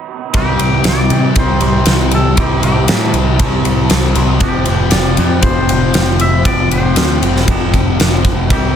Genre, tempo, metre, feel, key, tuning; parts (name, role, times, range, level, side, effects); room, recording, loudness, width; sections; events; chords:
rock, shoegaze and dream pop; 118 BPM; 4/4; straight; C major; A4 = 441 Hz
twangy electric guitar; riff; 0.3-8.8 s; F2 to G4; -21 LUFS; right 10 dB; reverse reverb
growling picked electric bass; bass; 0.3-8.7 s; F1 to C3; -15 LUFS; right 1 dB; overdrive
huge arena drum kit; drums; 0.3-8.6 s; kick drum, ride cymbal, snare drum; -15 LUFS; equal
twangy electric guitar; melody; 0.4-8.8 s; G4 to E5; -21 LUFS; left 2 dB; spring reverb, tape echo
warm analog pad; sustained chords; 0.6-8.8 s; E4 to A5; -23 LUFS; equal; chorus
thick fuzz guitar; riff; 0.4-8.8 s; F2 to C4; -18 LUFS; left 10 dB; distortion, analog chorus
small room reverb; dense, heavily limited modern master; -10 LUFS; side -8 dB against mid
0.3-8.8 A section
0.3 C; 4.4 Fmadd9